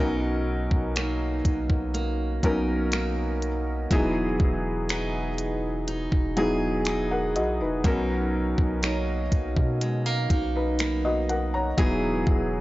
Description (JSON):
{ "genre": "contemporary R&B", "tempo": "61 BPM", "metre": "4/4", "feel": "straight", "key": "B major", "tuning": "A4 = 440 Hz", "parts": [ { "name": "felt-muted upright piano", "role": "accompaniment", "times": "0.0-12.6 s", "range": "F#3 to A#5", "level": "-27 LUFS", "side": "left 1 dB", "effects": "none" }, { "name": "picked steel-string acoustic guitar", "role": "arpeggios", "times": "0.0-12.6 s", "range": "B2 to G#4", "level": "-30 LUFS", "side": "right 2 dB", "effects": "analog delay" }, { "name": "long sustained 808-style bass", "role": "bass", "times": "0.0-12.6 s", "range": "E1 to B2", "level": "-30 LUFS", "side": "equal", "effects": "none" }, { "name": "trap drum kit", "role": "drums", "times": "0.7-12.5 s", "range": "finger snaps, hi-hat, kick drum", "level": "-25 LUFS", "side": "equal", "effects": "none" } ], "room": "studio ambience", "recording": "dry, gritty hardware recording, cassette tape, nothing above 7.7 kHz", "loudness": "-23 LUFS", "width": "side -18 dB against mid", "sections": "0.0-12.6 A section", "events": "none", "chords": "0.0 Bmaj7; 3.9 Emaj7; 7.8 Bmaj7; 11.8 Emaj7" }